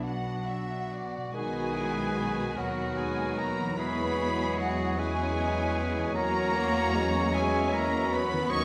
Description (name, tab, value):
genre	classical, slow romantic movement for symphony orchestra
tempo	50 BPM (dotted quarters)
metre	6/8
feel	uneven beats, rubato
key	B major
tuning	A4 = 440 Hz
part	warm studio violin section	melody	0.0-8.6 s	F#5 to C#6	-39 LUFS	equal	none
part	bright clarinet	second line	0.0-8.6 s	F#4 to C#5	-39 LUFS	equal	none
part	clear studio violin section	second line	0.0-8.6 s	A#3 to F#5	-42 LUFS	equal	none
part	mellow concert flute	second line	0.0-8.6 s	F#5 to C#6	-38 LUFS	equal	none
part	rich studio viola section	accompaniment	0.0-8.6 s	D#3 to D4	-40 LUFS	equal	none
part	mellow French horn section	sustained chords	0.0-8.6 s	B3 to F#4	-41 LUFS	equal	none
part	concert harp	arpeggios	0.0-8.6 s	B2 to D#5	-43 LUFS	equal	none
part	rich studio cello section	bass	0.0-8.6 s	F#3 to C#4	-39 LUFS	equal	none
part	warm studio double bass section	bass	0.0-8.6 s	B1 to E2	-39 LUFS	equal	none
part	clear oboe	second line	1.3-8.6 s	G#4 to E5	-42 LUFS	equal	none
part	warm bassoon	accompaniment	1.3-8.6 s	D#3 to G#3	-39 LUFS	equal	none
part	warm trombone section	sustained chords	1.3-8.6 s	D#3 to G#3	-40 LUFS	equal	none
part	mellow trumpet section	stabs	1.4-8.6 s	B4 to D#5	-40 LUFS	equal	none
room	wet scoring stage reverb, RT60 1.6 s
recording	none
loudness	-29 LUFS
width	mono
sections	0.0-1.4 A section; 1.4-8.6 B section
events	none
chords	0.0 Bm; 1.4 B; 3.8 E6; 6.2 F#7/E